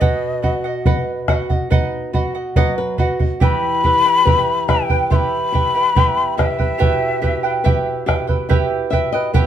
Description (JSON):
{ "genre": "andean folk, Andean ensemble", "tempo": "71 BPM", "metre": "4/4", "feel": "straight", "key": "E harmonic minor", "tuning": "A4 = 440 Hz", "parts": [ { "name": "breathy mellow quena", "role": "melody", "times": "0.0-8.0 s", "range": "D#5 to C6", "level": "-18 LUFS", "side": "left 4 dB", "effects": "none" }, { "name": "charango", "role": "accompaniment", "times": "0.0-9.5 s", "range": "E4 to G5", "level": "-21 LUFS", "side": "right 6 dB", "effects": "none" }, { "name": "flamenco guitar", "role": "accompaniment", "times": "0.0-9.5 s", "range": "B2 to E5", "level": "-25 LUFS", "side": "left 3 dB", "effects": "none" }, { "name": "bombo", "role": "percussion", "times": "0.0-9.5 s", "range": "none", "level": "-18 LUFS", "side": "right 1 dB", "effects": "none" } ], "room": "moderate studio reverb, RT60 0.8 s", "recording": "band playing live in one room", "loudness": "-15 LUFS", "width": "side -10 dB against mid", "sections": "0.0-9.5 A section", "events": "nylon-string guitar fill 2.1-3.4, 8.5-9.5", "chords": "0.0 B; 3.4 Em" }